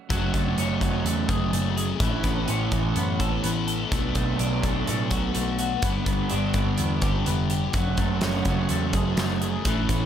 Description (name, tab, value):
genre	rock, shoegaze and dream pop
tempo	126 BPM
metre	4/4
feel	straight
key	F# minor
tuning	A4 = 441 Hz
part	twelve-string electric guitar	arpeggios	0.1-10.1 s	E3 to A4	-31 LUFS	left 3 dB	lush chorus, slapback echo
part	crunchy overdriven guitar	riff	0.1-10.1 s	F#2 to F#4	-28 LUFS	right 9 dB	reverse reverb
part	fuzz guitar	riff	0.1-10.1 s	F#2 to B3	-29 LUFS	left 8 dB	distortion, lush chorus
part	vintage muted picked electric bass	bass	0.1-10.1 s	E#1 to A2	-29 LUFS	equal	none
part	huge arena drum kit	drums	0.1-10.0 s	hi-hat, kick drum, snare drum	-28 LUFS	equal	none
room	moderate studio reverb, RT60 0.6 s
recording	none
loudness	-22 LUFS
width	side -9 dB against mid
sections	0.1-10.1 A section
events	none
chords	0.1 F#madd9; 2.0 Aadd9; 3.9 Bm7; 5.8 G; 7.7 F#madd9